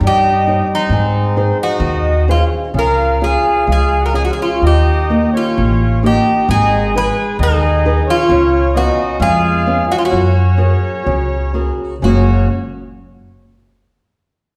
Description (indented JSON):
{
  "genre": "fado-style ballad",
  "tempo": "65 BPM",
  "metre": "2/4",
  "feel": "rubato",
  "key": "F# major",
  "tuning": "A4 = 435 Hz",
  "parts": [
    { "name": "nylon-string guitar", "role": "accompaniment", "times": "0.0-12.5 s", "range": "F#2 to E#5", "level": "-21 LUFS", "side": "equal", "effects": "none" },
    { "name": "upright bass", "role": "bass", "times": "0.0-12.5 s", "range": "F#1 to G#2", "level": "-18 LUFS", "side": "equal", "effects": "none" },
    { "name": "Greek bouzouki", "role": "melody", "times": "0.1-12.5 s", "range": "D#4 to B4", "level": "-19 LUFS", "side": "equal", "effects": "none" },
    { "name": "accordion", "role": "second line", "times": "0.1-12.5 s", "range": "B#3 to G#4", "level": "-23 LUFS", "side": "equal", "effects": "none" }
  ],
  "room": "wet recital hall reverb, RT60 1.4 s",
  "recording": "recorded in a church or concert hall",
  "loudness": "-14 LUFS",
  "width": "mono",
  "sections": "0.0-12.0 A section; 12.0-13.9 B section",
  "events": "none",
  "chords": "0.0 D#7/G; 0.9 G#; 2.8 C#; 4.6 D#; 6.5 G#m; 8.3 C#7; 10.1 F#add9"
}